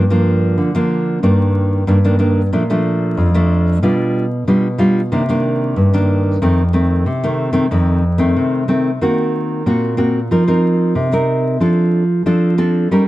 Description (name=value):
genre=samba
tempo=92 BPM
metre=4/4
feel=straight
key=unclear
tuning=A4 = 439 Hz
part: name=nylon-string guitar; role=solo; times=0.0-13.1 s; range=F2 to Bb4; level=-13 LUFS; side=equal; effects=none
room=light reverb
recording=vinyl crackle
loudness=-13 LUFS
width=side -16 dB against mid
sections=0.0-13.1 A section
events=none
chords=0.0 Gm7; 1.2 Ebmaj7/G; 2.5 Bbmaj7; 3.8 G7/B; 5.1 Cm9; 6.4 F7; 9.0 Ebm6; 10.3 F7sus4; 11.6 F6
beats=0.58 | 1.23 1.88 2.52 3.17 | 3.82 4.47 5.12 5.77 | 6.42 7.07 7.72 8.37 | 9.02 9.66 10.31 10.96 | 11.61 12.26 12.91